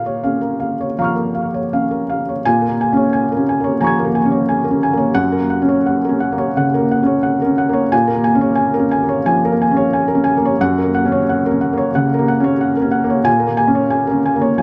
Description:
neoclassical minimalist piano; 89 BPM; 4/4; rubato; Bb minor; A4 = 440 Hz
felt-muted upright piano; solo; 0.0-14.6 s; Gb2 to Ab6; -16 LUFS; equal
moderate studio reverb, RT60 0.6 s; dark, warm production; -16 LUFS; mono
0.0-2.5 A section; 2.5-14.6 A section
0.0 Bbm; 2.5 Bbm7; 5.2 Gb; 7.9 Bbm7; 10.6 Gb; 13.3 Bbm7

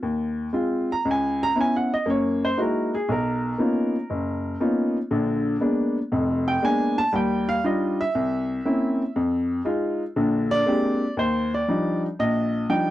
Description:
solo jazz; 118 BPM; 4/4; swing 69% on 8ths; Eb major; A4 = 437 Hz
warm upright piano; solo; 0.0-12.9 s; F1 to Bb5; -21 LUFS; equal
little or no reverb; dry, close 1970s-style studio recording; -21 LUFS; side -14 dB against mid
0.0-11.2 A section; 11.2-12.9 B section
upright piano solo 0.0-11.2
0.0 Ab6; 1.0 Dbm7; 2.1 Gb13; 3.1 Bmaj9#11; 5.1 Bb7b9; 7.1 Ebmaj9; 8.1 C7b9; 9.1 Fm7; 10.2 Bb13; 11.2 Ebmaj9

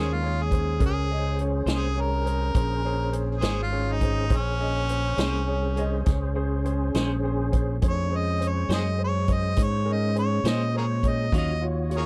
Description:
slow blues; 68 BPM (dotted quarters); 12/8; straight; Bb minor; A4 = 441 Hz
clear harmonica; melody; 0.0-12.1 s; Db4 to Eb5; -32 LUFS; equal; overdrive
clean electric guitar; accompaniment; 0.0-11.5 s; Eb3 to C5; -34 LUFS; equal; harmonic tremolo
clear concert grand piano; accompaniment; 0.0-12.1 s; Db4 to Eb5; -35 LUFS; equal
tonewheel organ; sustained chords; 0.0-12.1 s; Ab3 to Db5; -36 LUFS; equal; slow rotary speaker, overdrive, chorus vibrato
fingered electric bass; bass; 0.0-12.1 s; Ab1 to Bb2; -29 LUFS; equal
swinging big-band drum kit; drums; 0.5-12.0 s; hi-hat, kick drum, snare drum; -28 LUFS; equal
little or no reverb; dry, close 1970s-style studio recording; -25 LUFS; mono
0.0-12.1 A section
harmonica solo 0.0-12.1
0.0 Bbm9; 11.3 Ebm9

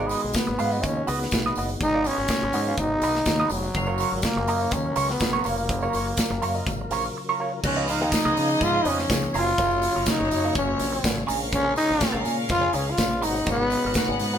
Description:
disco; 123 BPM; 4/4; straight; A4 = 439 Hz
growling trombone; melody; 0.0-14.4 s; F#3 to E#4; -25 LUFS; equal
clean electric guitar; accompaniment; 0.0-14.4 s; B3 to E#5; -29 LUFS; right 5 dB; wah
percussive tonewheel organ; sustained chords; 0.0-14.4 s; B2 to A#4; -34 LUFS; left 1 dB; chorus vibrato, slow rotary speaker
fingered electric bass with an envelope filter; bass; 0.0-14.4 s; E#1 to C#3; -30 LUFS; equal
modern studio drum kit; drums; 0.1-14.3 s; crash cymbal, hi-hat, kick drum, snare drum; -28 LUFS; right 1 dB
tambourine; percussion; 0.1-14.4 s; -37 LUFS; left 6 dB
rich symphonic string section; second line; 7.6-14.4 s; F#3 to F#5; -31 LUFS; left 3 dB
moderate studio reverb, RT60 0.8 s; band playing live in one room; -21 LUFS; side -9 dB against mid
0.0-7.6 A section; 7.6-14.4 B section
0.0 G#m7; 3.7 F#maj7; 7.6 C#9; 9.3 F#maj7; 11.3 A#m7; 13.2 G#m9

